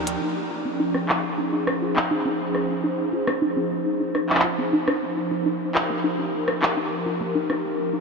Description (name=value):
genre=IDM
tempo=103 BPM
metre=4/4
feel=straight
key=Db major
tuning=A4 = 439 Hz
part: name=hollow soft pad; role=sustained chords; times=0.0-8.0 s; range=F3 to C5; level=-26 LUFS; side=equal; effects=ensemble chorus, vintage 12-bit sampler grit
part: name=warbly dusty pluck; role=arpeggios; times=0.0-8.0 s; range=Bb3 to F4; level=-27 LUFS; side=equal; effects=chorus, ping-pong delay
part: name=glitchy drum kit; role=drums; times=0.1-7.6 s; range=handclaps, hi-hat, rim click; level=-26 LUFS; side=equal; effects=low-pass filter on hats, low-pass filter on snare, low-pass filter on room, diffuse ambient delay
room=wet huge ambient reverb, RT60 7.5 s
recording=dreamy mix soaked in reverb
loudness=-21 LUFS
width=side -4 dB against mid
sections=0.2-8.0 A section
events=filter sweep on analog synth pad 0.2-8.0; filter sweep on synth arpeggio sound 0.2-8.0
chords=0.2 Dbmaj9; 4.9 Ebmaj9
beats=| 0.22 0.80 1.38 1.96 | 2.55 3.13 3.71 4.29 | 4.88 5.46 6.04 6.62 | 7.21 7.79